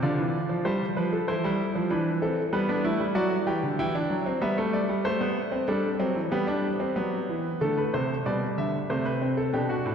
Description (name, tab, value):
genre	classical, baroque-style 3-part fugue for grand piano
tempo	95 BPM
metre	4/4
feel	straight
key	unclear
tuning	A4 = 440 Hz
part	clear grand piano	solo	0.0-9.9 s	A2 to G5	-24 LUFS	equal	none
room	wet church reverb, RT60 2.8 s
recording	dark, warm production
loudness	-24 LUFS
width	side -7 dB against mid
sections	0.0-7.6 A section; 7.6-9.9 B section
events	none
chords	0.0 Dm7; 1.3 C/E; 2.5 G; 3.8 Em; 6.3 G; 8.9 Am7/C